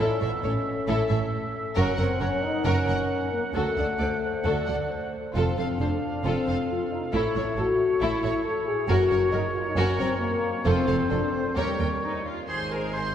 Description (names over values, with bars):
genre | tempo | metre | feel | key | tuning
cinematic, heroic adventure film score | 135 BPM | 4/4 | straight | unclear | A4 = 441 Hz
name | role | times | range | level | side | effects
rich chamber violin section | melody | 0.0-13.1 s | E4 to C6 | -34 LUFS | left 3 dB | none
clear oboe | second line | 0.0-13.1 s | Ab4 to Gb5 | -32 LUFS | right 1 dB | none
mellow clarinet | second line | 0.0-12.3 s | A4 to D5 | -35 LUFS | equal | none
warm symphonic violin section | second line | 0.0-13.1 s | Db4 to D5 | -36 LUFS | left 1 dB | none
clear symphonic viola section | accompaniment | 0.0-13.1 s | Eb4 to C5 | -34 LUFS | equal | none
mellow French horn section | sustained chords | 0.0-12.2 s | G3 to A4 | -28 LUFS | left 3 dB | none
clear studio double bass section | bass | 0.0-13.1 s | F1 to Eb2 | -31 LUFS | right 2 dB | none
clear symphonic cello section | bass | 0.0-11.9 s | D2 to A2 | -32 LUFS | right 2 dB | none
timpani | percussion | 5.4-6.0 s | F2 | -34 LUFS | equal | none
warm trombone section | sustained chords | 12.5-13.1 s | Eb3 to Ab3 | -34 LUFS | right 1 dB | none
room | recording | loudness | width
wet church reverb, RT60 3.3 s | recorded in a church or concert hall | -23 LUFS | side -9 dB against mid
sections
0.0-12.5 A section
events
none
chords
0.0 A; 1.8 Gb; 3.5 D; 5.4 F; 7.1 A; 8.9 Gb; 10.7 F; 11.6 Eb7; 12.5 Ab